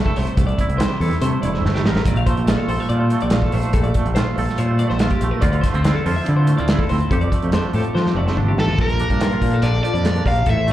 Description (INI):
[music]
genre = math rock and midwest emo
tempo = 143 BPM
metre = 4/4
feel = straight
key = unclear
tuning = A4 = 441 Hz
[part]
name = twangy electric guitar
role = accompaniment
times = 0.0-10.7 s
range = F2 to Bb4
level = -24 LUFS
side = right 5 dB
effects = tremolo, slapback echo
[part]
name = twelve-string electric guitar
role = arpeggios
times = 0.0-10.7 s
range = F4 to F5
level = -27 LUFS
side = left 4 dB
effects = slapback echo, tape echo
[part]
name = modern studio drum kit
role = drums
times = 0.1-10.7 s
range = crash cymbal, hi-hat, kick drum, snare drum, toms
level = -21 LUFS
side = equal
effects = none
[part]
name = growling fingered electric bass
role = bass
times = 0.2-10.7 s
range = E1 to F3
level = -19 LUFS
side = equal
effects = overdrive
[part]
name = crunchy overdriven guitar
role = melody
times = 8.6-10.7 s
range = A4 to F5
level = -22 LUFS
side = left 1 dB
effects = slapback echo
[sound]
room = small room ambience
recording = live gig heard through the venue's PA, club reverb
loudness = -16 LUFS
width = side -13 dB against mid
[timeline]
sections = 0.0-8.8 A section; 8.8-10.7 B section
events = drum fill 1.6-2.1, 8.0-8.8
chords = 0.0 C13; 2.1 Gm9/Bb; 5.4 Dm9; 7.1 F69; 8.8 Bbmaj7